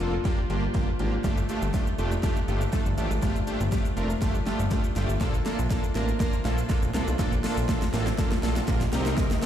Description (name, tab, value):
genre	dance-pop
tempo	121 BPM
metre	4/4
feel	straight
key	unclear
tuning	A4 = 440 Hz
part	big bright polysynth	accompaniment	0.0-9.5 s	A3 to Bb4	-30 LUFS	right 2 dB	chorus, sidechain pumping
part	warm brass ensemble	sustained chords	0.0-9.5 s	Bb2 to F4	-37 LUFS	left 2 dB	sidechain pumping
part	fat analog bass	bass	0.0-9.3 s	F1 to C2	-27 LUFS	equal	sidechain pumping
part	deep house drum kit	drums	0.0-9.5 s	hi-hat, kick drum, shaker, snare drum	-27 LUFS	equal	overdrive
part	riser	sound effects	7.0-9.5 s	none	-37 LUFS	equal	none
room	light reverb, digital ambience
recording	played on a big sound system in a bare room, large studio reverb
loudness	-24 LUFS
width	side -10 dB against mid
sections	0.0-9.5 A section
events	build-up 0.0-9.5; drum fill 0.0-9.5; riser 7.0-9.5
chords	0.0 Gm7; 1.2 Ebmaj9#11; 5.2 Bbmaj7; 8.9 Cm7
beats	0.25 0.75 | 1.24 1.74 2.23 2.73 | 3.23 3.72 4.22 4.71 | 5.21 5.71 6.20 6.70 | 7.19 7.69 8.19 8.68 | 9.18